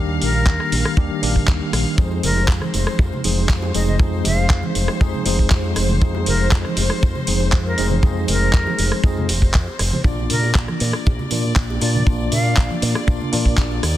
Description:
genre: nu-disco, nu disco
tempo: 119 BPM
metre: 4/4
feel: straight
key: F dorian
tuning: A4 = 441 Hz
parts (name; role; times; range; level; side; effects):
- mellow tine electric piano; accompaniment; 0.0-13.8 s; Eb3 to Ab4; -24 LUFS; equal; medium stereo tremolo
- rich chamber string section; sustained chords; 0.0-14.0 s; C5 to F5; -30 LUFS; left 6 dB; sidechain pumping
- fingered electric bass with an envelope filter; bass; 0.0-14.0 s; F1 to Bb2; -21 LUFS; equal; sidechain pumping
- bright silver concert flute; melody; 0.2-12.7 s; Bb4 to F5; -27 LUFS; equal; dub echo
- pop drum kit; drums; 0.2-13.9 s; handclaps, hi-hat, rim click; -24 LUFS; equal; soft clipping on snare
- kick drum; drums; 0.5-13.7 s; none; -16 LUFS; equal; soft clipping on snare
- tambourine, bongos and congas; percussion; 2.0-13.9 s; none; -29 LUFS; right 3 dB; none
room: little or no reverb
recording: dense, heavily limited modern master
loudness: -16 LUFS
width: side -13 dB against mid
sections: 0.0-14.0 A section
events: none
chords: 0.0 Ebmaj7; 2.0 Fm7; 10.0 Bb

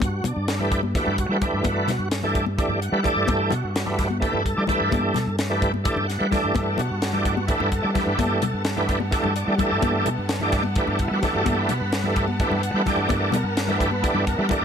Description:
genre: electric jazz fusion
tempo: 257 BPM (eighths)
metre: 7/8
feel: straight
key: G major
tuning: A4 = 443 Hz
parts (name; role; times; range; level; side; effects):
- overdriven tonewheel organ; accompaniment; 0.0-14.6 s; E3 to A5; -24 LUFS; right 1 dB; slow rotary speaker, chorus vibrato
- fingered electric bass; bass; 0.0-14.6 s; G2 to G3; -26 LUFS; equal; none
- tight funk drum kit; drums; 0.0-14.6 s; hi-hat, kick drum, snare drum; -27 LUFS; equal; none
- congas; percussion; 0.0-14.6 s; none; -30 LUFS; left 6 dB; none
- bright studio string section; sustained chords; 6.6-14.6 s; G3 to A5; -31 LUFS; equal; none
room: light reverb, small room ambience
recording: none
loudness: -20 LUFS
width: side -7 dB against mid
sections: 0.0-14.6 A section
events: tonewheel organ fill 2.6-3.3, 5.9-6.6, 9.1-9.8, 12.4-13.1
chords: 0.0 Gmaj9

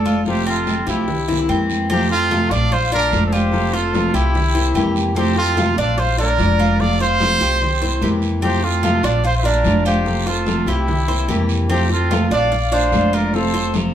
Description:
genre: latin, Cuban son and guajira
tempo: 147 BPM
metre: 4/4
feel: straight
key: F major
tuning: A4 = 439 Hz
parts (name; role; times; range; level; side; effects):
- breathy trumpet; melody; 0.0-13.7 s; E4 to D5; -21 LUFS; right 2 dB; none
- bright reedy silver concert flute; second line; 0.0-13.7 s; G4 to F5; -26 LUFS; left 6 dB; none
- nylon-string guitar; accompaniment; 0.0-13.9 s; C3 to F4; -22 LUFS; left 2 dB; none
- Cuban tres; arpeggios; 0.0-13.9 s; C4 to C5; -24 LUFS; right 2 dB; none
- upright bass; bass; 0.0-13.9 s; F1 to F2; -21 LUFS; equal; none
- congas; percussion; 0.1-13.9 s; none; -24 LUFS; equal; none
- guiro; percussion; 0.1-13.9 s; none; -31 LUFS; right 5 dB; none
room: moderate large studio reverb, RT60 0.8 s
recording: band playing live in one room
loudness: -15 LUFS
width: side -10 dB against mid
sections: 0.0-1.9 A section; 1.9-13.9 B section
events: none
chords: 0.3 F; 1.1 C7; 1.9 F; 2.7 Bbmaj7; 3.5 F; 4.3 C7; 5.2 F; 6.0 Bbmaj7; 6.8 F; 7.6 C7; 8.4 F; 9.2 Bbmaj7; 10.1 F; 10.9 C7; 11.7 F; 12.5 Bbmaj7; 13.3 F

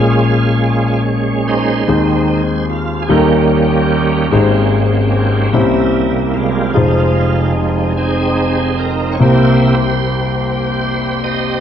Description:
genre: gospel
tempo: 49 BPM (dotted quarters)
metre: 6/8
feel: straight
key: Ab major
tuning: A4 = 436 Hz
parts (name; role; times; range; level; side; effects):
- clear concert grand piano; accompaniment; 0.0-11.6 s; F1 to C5; -14 LUFS; left 2 dB; none
- bright tonewheel organ; sustained chords; 0.0-11.6 s; Ab2 to Eb5; -15 LUFS; right 4 dB; fast rotary speaker, overdrive, chorus vibrato
- pipe organ, principal chorus; sustained chords; 6.8-11.6 s; G3 to F4; -23 LUFS; equal; none
room: wet large studio reverb, RT60 1.2 s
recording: dark, warm production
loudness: -12 LUFS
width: side -9 dB against mid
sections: 0.0-11.6 A section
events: tonewheel organ solo 0.0-11.6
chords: 0.0 Bbm7; 1.9 Ab/Eb; 3.1 Eb7; 4.3 Abmaj7; 5.5 C7b9; 6.8 Fm7; 9.2 C7

